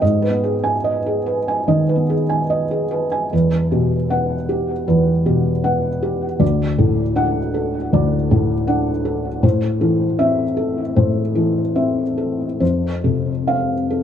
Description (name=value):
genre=neoclassical minimalist piano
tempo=69-80 BPM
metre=4/4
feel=rubato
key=unclear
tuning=A4 = 440 Hz
part: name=felt-muted upright piano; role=solo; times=0.0-14.0 s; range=D2 to G#5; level=-16 LUFS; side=equal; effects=tape echo
room=light reverb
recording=lossy compression artefacts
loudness=-16 LUFS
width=side -9 dB against mid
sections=0.0-3.3 A section; 3.3-14.0 B section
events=none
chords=0.0 G#m; 3.3 Emadd9; 6.4 D; 9.4 Am; 12.6 F